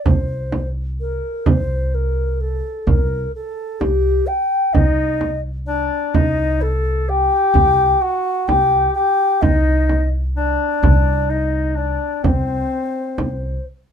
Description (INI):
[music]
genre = Arabic maqam ensemble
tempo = 128 BPM (eighths)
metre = 10/8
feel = straight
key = C maqam nikriz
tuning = A4 = 440 Hz
[part]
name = bright reedy round clay ocarina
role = melody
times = 0.0-13.7 s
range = G4 to G5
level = -20 LUFS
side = left 2 dB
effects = none
[part]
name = upright bass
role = bass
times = 0.1-13.6 s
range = C2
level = -20 LUFS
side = equal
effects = none
[part]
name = frame drum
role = percussion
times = 0.1-13.4 s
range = none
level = -18 LUFS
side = right 3 dB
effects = none
[part]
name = warm clarinet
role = second line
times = 4.7-13.6 s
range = C4 to A4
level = -22 LUFS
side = left 2 dB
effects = none
[sound]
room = moderate small room reverb, RT60 0.5 s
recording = minimal, uncompressed stereo recording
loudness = -16 LUFS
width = side -8 dB against mid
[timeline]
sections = 0.0-13.9 A section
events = none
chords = none